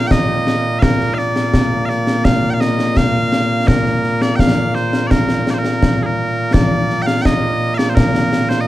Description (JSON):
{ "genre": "scottish traditional, Scottish pipe music", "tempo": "84 BPM", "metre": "2/4", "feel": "straight", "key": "Bb major", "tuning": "A4 = 436 Hz", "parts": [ { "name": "loud bright bagpipes", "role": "melody", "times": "0.0-8.7 s", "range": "Bb2 to G5", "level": "-16 LUFS", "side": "equal", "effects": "none" }, { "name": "concert snare drum and concert bass drum", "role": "drums", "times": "0.1-8.7 s", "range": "none", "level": "-16 LUFS", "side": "left 1 dB", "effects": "none" } ], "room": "light reverb", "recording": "dark, warm production", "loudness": "-13 LUFS", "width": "side -15 dB against mid", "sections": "0.0-6.5 A section; 6.5-8.7 B section", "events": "none", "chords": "none", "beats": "0.11 | 0.83 1.54 | 2.26 2.97 | 3.69 4.40 | 5.11 5.83 | 6.54 7.26 | 7.97" }